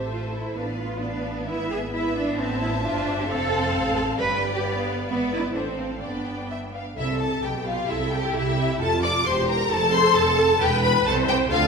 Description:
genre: quick classical-period movement for string orchestra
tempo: 132 BPM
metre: 2/4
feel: straight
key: A minor, C major from 3.3 s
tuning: A4 = 440 Hz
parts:
  - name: warm studio violin section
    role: melody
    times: 0.0-11.7 s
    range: E5 to D6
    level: -27 LUFS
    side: left 4 dB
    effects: none
  - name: rich studio violin section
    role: second line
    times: 0.0-11.7 s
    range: E4 to F5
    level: -28 LUFS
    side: left 1 dB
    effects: none
  - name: rich studio double bass section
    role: bass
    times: 0.0-11.7 s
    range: E1 to D2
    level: -30 LUFS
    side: right 2 dB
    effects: none
  - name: warm studio viola section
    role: accompaniment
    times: 0.1-11.7 s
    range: G3 to C5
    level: -28 LUFS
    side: right 1 dB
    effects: none
  - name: rich studio cello section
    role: bass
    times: 0.1-11.7 s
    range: E2 to B4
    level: -28 LUFS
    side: right 2 dB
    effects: none
room: wet recital hall reverb, RT60 1.5 s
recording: recorded in a church or concert hall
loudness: -21 LUFS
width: side -5 dB against mid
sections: 0.0-7.0 A section; 7.0-11.7 B section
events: none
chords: 0.0 Am; 0.6 Bm7b5/A; 1.5 E/G#; 2.4 Am; 3.3 F; 4.2 G; 5.1 E7/G#; 5.6 Am; 6.0 G; 7.0 C; 7.4 G7/B; 7.9 C; 8.8 F; 9.3 C7/E; 9.7 F; 10.6 Em; 11.1 Am/C

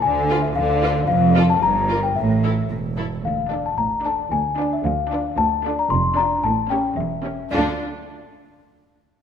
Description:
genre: cinematic, playful, whimsical film cue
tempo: 112 BPM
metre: 2/4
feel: straight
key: D minor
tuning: A4 = 440 Hz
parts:
  - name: celesta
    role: melody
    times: 0.0-7.8 s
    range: D5 to C6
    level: -21 LUFS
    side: left 7 dB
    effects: none
  - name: rich studio cello section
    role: bass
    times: 0.0-7.8 s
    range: D2 to D3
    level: -23 LUFS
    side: right 3 dB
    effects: none
  - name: warm studio double bass section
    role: bass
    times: 0.0-7.8 s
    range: E1 to D2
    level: -26 LUFS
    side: right 4 dB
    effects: none
  - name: warm studio violin section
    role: melody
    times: 0.3-7.8 s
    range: A4 to D5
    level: -38 LUFS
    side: left 2 dB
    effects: none
  - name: rich studio violin section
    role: second line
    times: 0.3-7.8 s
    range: F4 to B4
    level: -33 LUFS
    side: left 2 dB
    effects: none
  - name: clear studio viola section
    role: accompaniment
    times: 0.3-7.8 s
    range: C#4 to F4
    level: -28 LUFS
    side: right 2 dB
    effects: none
room: moderate scoring stage reverb, RT60 1.9 s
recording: none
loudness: -18 LUFS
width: side -8 dB against mid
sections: 0.0-7.5 A section; 7.5-8.6 B section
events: none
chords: 0.0 Ddim; 1.1 Dm/F (rootless); 1.6 Gm7; 2.2 A5; 3.2 D5; 4.3 Ddim7; 5.9 Dm/F; 6.4 A7b9; 7.5 Dm

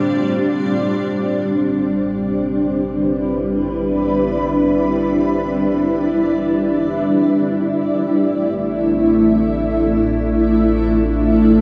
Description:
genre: ambient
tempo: free time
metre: none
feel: none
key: unclear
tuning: A4 = 442 Hz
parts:
  - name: granular cloud pad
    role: sustained chords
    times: 0.0-11.6 s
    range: A2 to C5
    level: -17 LUFS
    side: equal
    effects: built-in reverb, shimmer reverb
  - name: deep rumbling drone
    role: bass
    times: 1.7-11.6 s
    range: A1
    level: -30 LUFS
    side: equal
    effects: built-in reverb
room: wet plate reverb, RT60 3.4 s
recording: cassette tape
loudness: -17 LUFS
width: mono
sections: 0.7-11.6 A section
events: fade-in on synth drone 0.7-11.6; filter sweep on ambient pad 0.7-11.6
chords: 0.0 G7sus4/A; 0.7 Cmaj9/A; 7.7 Dm9/A

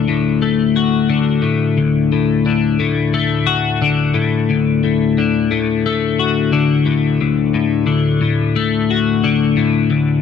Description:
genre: rock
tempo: 88 BPM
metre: 4/4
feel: straight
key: D major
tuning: A4 = 440 Hz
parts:
  - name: twelve-string electric guitar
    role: solo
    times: 0.0-10.2 s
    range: D2 to F#4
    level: -14 LUFS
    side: left 5 dB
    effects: rotary speaker
room: wet echo chamber reverb, RT60 1.7 s, digital ambience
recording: none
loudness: -14 LUFS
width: side -7 dB against mid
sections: 0.0-10.2 A section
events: none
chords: 0.0 D

